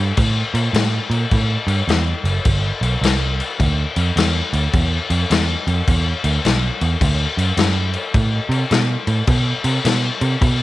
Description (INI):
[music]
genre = blues rock power trio and southern rock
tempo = 106 BPM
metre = 4/4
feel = swing 64% on 8ths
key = unclear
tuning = A4 = 440 Hz
[part]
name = vintage muted picked electric bass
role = bass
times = 0.0-10.6 s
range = F#1 to C3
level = -18 LUFS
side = right 1 dB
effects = none
[part]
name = vintage drum kit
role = drums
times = 0.2-10.6 s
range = crash cymbal, kick drum, snare drum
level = -19 LUFS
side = left 2 dB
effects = none
[sound]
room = little or no reverb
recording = 1960s-style stereo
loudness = -16 LUFS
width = side -16 dB against mid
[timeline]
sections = 0.0-10.6 A section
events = none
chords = none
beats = | 0.18 0.75 1.32 1.89 | 2.46 3.02 3.59 4.16 | 4.73 5.30 5.87 6.44 | 7.00 7.57 8.14 8.71 | 9.28 9.85 10.41